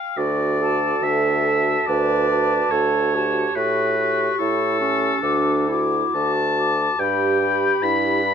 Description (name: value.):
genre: classical, slow romantic movement for wind quintet.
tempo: 71 BPM.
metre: 4/4.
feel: rubato.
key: D major.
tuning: A4 = 440 Hz.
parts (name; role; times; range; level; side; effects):
silver concert flute; melody; 0.0-8.3 s; G5 to D6; -25 LUFS; left 4 dB; none.
clear oboe; second line; 0.0-8.3 s; A4 to B5; -22 LUFS; left 2 dB; none.
warm clarinet; accompaniment; 0.2-8.3 s; C#4 to B4; -26 LUFS; right 9 dB; none.
mellow bassoon; bass; 0.2-8.3 s; D2 to A2; -23 LUFS; right 1 dB; none.
dark French horn; accompaniment; 0.6-8.3 s; F#4 to G4; -29 LUFS; left 1 dB; none.
room: light reverb.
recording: dark, warm production.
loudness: -18 LUFS.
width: side -7 dB against mid.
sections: 0.2-8.3 A section.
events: none.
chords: 0.2 D; 3.6 A7; 5.2 D; 7.0 G.